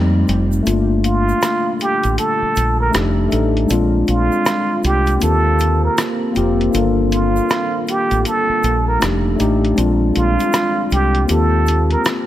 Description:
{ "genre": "lo-fi hip hop", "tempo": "79 BPM", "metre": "4/4", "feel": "swing 62% on 16ths", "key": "G minor", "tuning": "A4 = 439 Hz", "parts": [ { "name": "mellow tine electric piano", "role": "accompaniment", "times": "0.0-12.3 s", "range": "G3 to A4", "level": "-19 LUFS", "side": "left 3 dB", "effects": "cassette tape, low-pass filter" }, { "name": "deep dark ambient pad", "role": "sustained chords", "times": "0.0-12.3 s", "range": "Bb2 to A4", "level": "-27 LUFS", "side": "right 2 dB", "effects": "chorus, built-in reverb, low-pass filter" }, { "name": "deep dub fingered electric bass", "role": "bass", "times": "0.0-11.9 s", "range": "F1 to F2", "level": "-17 LUFS", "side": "equal", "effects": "none" }, { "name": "lo-fi sampler-style drum kit", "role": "drums", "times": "0.3-12.3 s", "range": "hi-hat, rim click", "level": "-22 LUFS", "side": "equal", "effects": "none" }, { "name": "egg shaker", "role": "percussion", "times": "0.3-12.3 s", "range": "none", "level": "-34 LUFS", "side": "right 6 dB", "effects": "none" }, { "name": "trumpet with plunger mute", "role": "melody", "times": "1.0-12.0 s", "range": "F4 to Bb4", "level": "-20 LUFS", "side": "right 2 dB", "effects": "low-pass filter, tape echo" } ], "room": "light reverb", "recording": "none", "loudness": "-14 LUFS", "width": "side -13 dB against mid", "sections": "0.7-12.3 A section", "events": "kick muted 0.7-12.3", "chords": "0.0 F9; 0.7 Gm9; 2.9 F13; 3.7 Bb9; 5.2 Eb69; 6.7 Gm9; 9.0 F13; 9.8 Bb9; 11.3 Eb69" }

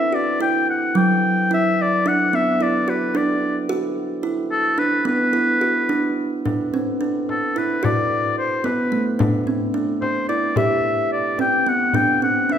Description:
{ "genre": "contemporary instrumental, chamber music in an uneven meter", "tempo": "219 BPM (eighths)", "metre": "5/8", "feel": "straight", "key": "B phrygian", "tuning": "A4 = 440 Hz", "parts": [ { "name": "warm oboe", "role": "melody", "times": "0.0-12.6 s", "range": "A4 to G5", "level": "-20 LUFS", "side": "left 2 dB", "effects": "none" }, { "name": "kalimba", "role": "arpeggios", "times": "0.0-12.6 s", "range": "F#3 to G4", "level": "-21 LUFS", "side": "right 2 dB", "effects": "none" }, { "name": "frame drum", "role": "percussion", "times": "6.5-12.4 s", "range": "none", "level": "-26 LUFS", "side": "left 4 dB", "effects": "none" } ], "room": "wet recital hall reverb, RT60 1.6 s", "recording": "minimal, uncompressed stereo recording", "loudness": "-18 LUFS", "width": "side -9 dB against mid", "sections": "0.0-6.5 A section; 6.5-12.6 A section", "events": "none", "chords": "0.0 Cadd9 (rootless); 1.0 G (rootless); 3.7 Dadd9; 5.1 Bm; 6.5 Bm7; 9.2 Cmaj9; 11.9 Am11 (rootless)" }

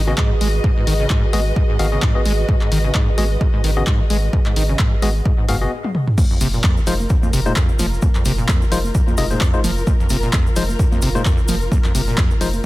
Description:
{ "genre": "acid house", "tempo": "130 BPM", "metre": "4/4", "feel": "swing 55% on 16ths", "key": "F phrygian", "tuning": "A4 = 440 Hz", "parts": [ { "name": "warbly tape-like pad", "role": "sustained chords", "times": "0.0-5.7 s", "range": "Ab4", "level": "-30 LUFS", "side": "right 5 dB", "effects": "chorus, built-in reverb, phaser, sidechain pumping" }, { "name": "saturated sub bass", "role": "bass", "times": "0.0-12.6 s", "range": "F1 to Ab1", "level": "-21 LUFS", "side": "equal", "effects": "sidechain pumping" }, { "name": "warm symphonic string section", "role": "texture", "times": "0.0-12.7 s", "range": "F4 to Eb5", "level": "-28 LUFS", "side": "left 1 dB", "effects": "sidechain pumping" }, { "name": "acid bass, saw", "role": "riff", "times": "0.1-12.5 s", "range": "Eb2 to Ab3", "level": "-23 LUFS", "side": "equal", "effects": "overdrive, analog chorus, digital delay" }, { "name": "barky tine electric piano", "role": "stabs", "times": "0.1-12.5 s", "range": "Ab3 to F5", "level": "-26 LUFS", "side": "left 4 dB", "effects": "digital delay" }, { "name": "electronic kick drum", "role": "drums", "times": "0.2-12.3 s", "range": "none", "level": "-18 LUFS", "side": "equal", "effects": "none" }, { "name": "punchy analog drum machine", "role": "drums", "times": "0.2-12.6 s", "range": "congas, crash cymbal, handclaps, hi-hat, toms", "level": "-24 LUFS", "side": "equal", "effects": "overdrive" }, { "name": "cabasa", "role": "percussion", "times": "6.2-12.6 s", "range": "none", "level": "-34 LUFS", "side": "right 2 dB", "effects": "none" } ], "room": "digital ambience", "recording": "dense, heavily limited modern master", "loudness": "-15 LUFS", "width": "side -18 dB against mid", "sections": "0.0-6.2 A section; 6.2-12.7 B section", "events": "stop 5.7-6.2; drum fill 5.8-6.2; drop 6.2-12.7", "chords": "0.0 Abm7; 6.2 F7(no3)" }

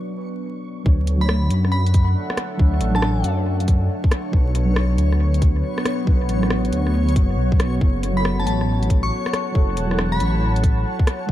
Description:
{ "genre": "future garage", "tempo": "138 BPM", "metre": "4/4", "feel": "swing 66% on 16ths", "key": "F# minor", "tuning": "A4 = 440 Hz", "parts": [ { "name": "muted felt-like synth keys", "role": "accompaniment", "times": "0.0-11.3 s", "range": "F#3 to C#5", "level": "-26 LUFS", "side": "right 2 dB", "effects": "chorus, sidechain pumping, dub echo" }, { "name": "deep dark ambient pad", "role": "sustained chords", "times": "0.0-11.3 s", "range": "B3 to A5", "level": "-28 LUFS", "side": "left 1 dB", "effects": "chorus, built-in reverb, sidechain pumping" }, { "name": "backwards swelling texture", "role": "texture", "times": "0.0-11.3 s", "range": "C#5 to C#6", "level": "-35 LUFS", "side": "left 4 dB", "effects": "built-in reverb" }, { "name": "dark detuned saw bass", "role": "bass", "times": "0.9-11.3 s", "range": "E1 to F#2", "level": "-20 LUFS", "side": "equal", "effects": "sidechain pumping" }, { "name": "electronic kick drum", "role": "drums", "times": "0.9-11.3 s", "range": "none", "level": "-16 LUFS", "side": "equal", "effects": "none" }, { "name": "garage drum kit", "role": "drums", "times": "1.1-11.2 s", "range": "hi-hat, rim click", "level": "-28 LUFS", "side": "left 1 dB", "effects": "analog delay" }, { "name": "glassy synth bell", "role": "melody", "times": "1.2-3.2, 8.2-10.4 s", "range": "A5 to C#6", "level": "-29 LUFS", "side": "left 1 dB", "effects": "chorus, phaser, analog delay" } ], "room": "light reverb, digital ambience", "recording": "echo-heavy mix, vinyl crackle", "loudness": "-17 LUFS", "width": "side -13 dB against mid", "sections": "0.9-11.3 A section", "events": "none", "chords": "0.0 Dmaj7; 4.3 Bm; 7.8 F#m7" }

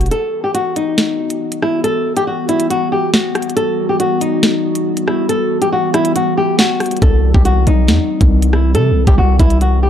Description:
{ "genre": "hip hop, drill", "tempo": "139 BPM", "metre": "4/4", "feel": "half-time", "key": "E harmonic minor", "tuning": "A4 = 440 Hz", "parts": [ { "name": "flamenco guitar", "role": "melody", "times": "0.0-9.9 s", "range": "D#4 to A4", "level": "-17 LUFS", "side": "left 2 dB", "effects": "low-pass filter" }, { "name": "distorted 808-style bass", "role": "bass", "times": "0.0-0.1, 7.0-9.9 s", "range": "E1 to C3", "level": "-13 LUFS", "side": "equal", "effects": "distortion" }, { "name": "drill drum kit", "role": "drums", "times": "0.0-9.7 s", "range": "hi-hat, kick drum, rim click, snare drum", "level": "-15 LUFS", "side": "equal", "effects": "none" }, { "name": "warbly tape-like pad", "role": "sustained chords", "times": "0.4-9.9 s", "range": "E3 to F#4", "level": "-20 LUFS", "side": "equal", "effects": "chorus, built-in reverb" } ], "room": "digital ambience", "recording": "dark, warm production, lossy compression artefacts", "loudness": "-12 LUFS", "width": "side -9 dB against mid", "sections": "0.0-9.9 A section", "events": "kick muted 0.1-7.0; break 0.1-1.0", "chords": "0.1 Emadd9; 7.0 C" }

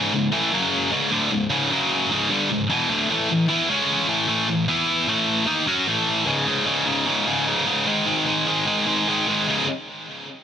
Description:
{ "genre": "metal", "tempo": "151 BPM", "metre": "4/4", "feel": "straight", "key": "C# minor", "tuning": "A4 = 441 Hz", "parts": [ { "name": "heavy high-gain guitar", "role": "solo", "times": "0.0-9.6 s", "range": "C#2 to F#4", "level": "-19 LUFS", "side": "equal", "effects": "distortion, digital delay" } ], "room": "moderate studio reverb, RT60 0.8 s", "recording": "none", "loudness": "-18 LUFS", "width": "side -8 dB against mid", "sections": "0.0-6.3 A section; 6.3-9.5 B section", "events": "none", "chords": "0.0 C#m; 0.5 F#5; 0.9 C#5; 1.7 F#5; 2.1 C#m; 3.1 A5; 3.7 C#5; 4.1 A5; 4.7 E5; 5.1 A5; 6.3 C#5; 7.9 G#5; 9.5 C#5" }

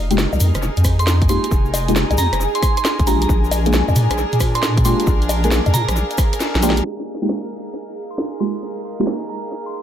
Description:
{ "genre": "UK garage, two-step garage", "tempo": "135 BPM", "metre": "4/4", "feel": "swing 66% on 16ths", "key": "F dorian", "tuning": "A4 = 440 Hz", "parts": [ { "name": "ethereal airy pad", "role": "sustained chords", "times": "0.4-9.8 s", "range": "Ab4 to Ab5", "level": "-28 LUFS", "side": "right 1 dB", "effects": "ensemble chorus, built-in reverb, sidechain pumping" }, { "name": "deep soft wobble bass", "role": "bass", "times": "0.0-6.8 s", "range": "F1 to Bb2", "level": "-18 LUFS", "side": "equal", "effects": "chorus, sidechain pumping" }, { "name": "rich studio string section", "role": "texture", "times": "0.0-9.8 s", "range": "D4 to F5", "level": "-30 LUFS", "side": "left 1 dB", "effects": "sidechain pumping" }, { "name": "deep mellow chord stab", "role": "stabs", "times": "0.1-9.0 s", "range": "Ab3 to Ab4", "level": "-23 LUFS", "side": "left 1 dB", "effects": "chorus, dub echo" }, { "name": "house drum kit", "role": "drums", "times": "0.1-9.8 s", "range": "bongos, hi-hat, rim click, snare drum", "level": "-24 LUFS", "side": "equal", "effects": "low-pass filter on hats, low-pass filter on perc, low-pass filter on snare, low-pass filter on room, analog delay" }, { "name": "egg shaker", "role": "percussion", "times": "0.1-6.8 s", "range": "none", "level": "-30 LUFS", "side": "left 4 dB", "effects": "none" }, { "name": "electronic kick drum", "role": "drums", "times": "0.8-6.3 s", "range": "none", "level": "-18 LUFS", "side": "equal", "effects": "none" }, { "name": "soft synth bell", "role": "melody", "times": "1.0-9.8 s", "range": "Bb5 to C6", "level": "-26 LUFS", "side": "right 4 dB", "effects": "chorus, phaser, analog delay" } ], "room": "light reverb", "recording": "echo-heavy mix, low-pass filter", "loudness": "-15 LUFS", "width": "side -10 dB against mid", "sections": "0.0-6.8 A section; 6.8-9.8 B section", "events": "filter sweep on synth stab 0.0-6.8, 6.8-9.8; kick drops out 6.4-6.8; drum fill 6.4-6.8; filter sweep on drum 6.8-9.8; filter sweep on ambient pad 6.8-9.8; filter sweep 6.8-9.8", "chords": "0.0 Fm11; 3.1 Bb7; 6.8 Fm11" }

